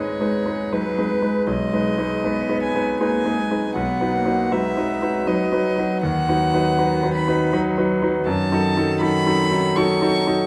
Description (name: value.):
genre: classical, slow romantic movement for piano trio.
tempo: 79 BPM.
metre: 3/4.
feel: rubato.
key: unclear.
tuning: A4 = 444 Hz.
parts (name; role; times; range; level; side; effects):
rich violin; melody; 0.0-10.5 s; B4 to C#6; -28 LUFS; equal; none.
rich cello; second line; 0.0-10.5 s; D#3 to B3; -28 LUFS; equal; none.
bright concert grand piano; accompaniment; 0.0-10.5 s; B1 to B4; -22 LUFS; equal; none.
room: moderate recital hall reverb, RT60 1.6 s.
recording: dark, warm production.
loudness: -21 LUFS.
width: mono.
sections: 0.0-10.5 A section.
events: none.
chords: 0.0 G#m; 1.5 G#m/B; 3.8 B; 6.0 B/D#; 8.3 D#dim/F#.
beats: 0.72 | 1.48 2.24 3.00 | 3.76 4.51 5.27 | 6.02 6.77 7.51 | 8.25 8.99 9.76.